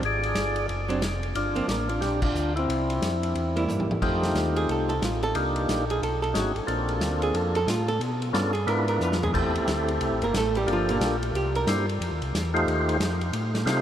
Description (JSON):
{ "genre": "soul jazz organ trio", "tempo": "180 BPM", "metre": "4/4", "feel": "swing 62% on 8ths", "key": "unclear", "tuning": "A4 = 441 Hz", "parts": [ { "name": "mellow tonewheel organ", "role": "bass", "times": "0.0-13.8 s", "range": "F1 to C3", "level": "-29 LUFS", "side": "equal", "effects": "chorus vibrato, slow rotary speaker" }, { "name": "vintage drum kit", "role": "drums", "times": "0.0-13.8 s", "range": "crash cymbal, hi-hat, kick drum, ride cymbal, snare drum, toms", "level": "-32 LUFS", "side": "equal", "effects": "none" }, { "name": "percussive tonewheel organ", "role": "melody", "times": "0.1-13.8 s", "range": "A3 to D5", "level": "-27 LUFS", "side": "left 1 dB", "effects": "slow rotary speaker" }, { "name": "archtop guitar, miked and amplified", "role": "accompaniment", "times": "0.9-11.7 s", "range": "Bb2 to Bb4", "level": "-30 LUFS", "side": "right 3 dB", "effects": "none" } ], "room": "wet huge ambient reverb, RT60 7.5 s", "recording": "in a vast, echoing space", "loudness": "-23 LUFS", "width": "side -10 dB against mid", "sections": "0.0-4.0 A section; 4.0-13.8 B section", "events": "band accent 2.2; drum fill 3.7-4.0, 9.0-9.3; hollow-body jazz guitar solo 4.0-13.8", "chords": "0.0 Ab7(b5, no3); 1.4 Gm9; 2.7 C7; 4.0 F7; 5.3 Cm11; 6.0 B13; 6.7 Bbmaj9; 8.0 Bm7b5; 8.7 E7b9; 9.3 Am7; 10.7 Gm7; 11.3 C9; 12.0 F7" }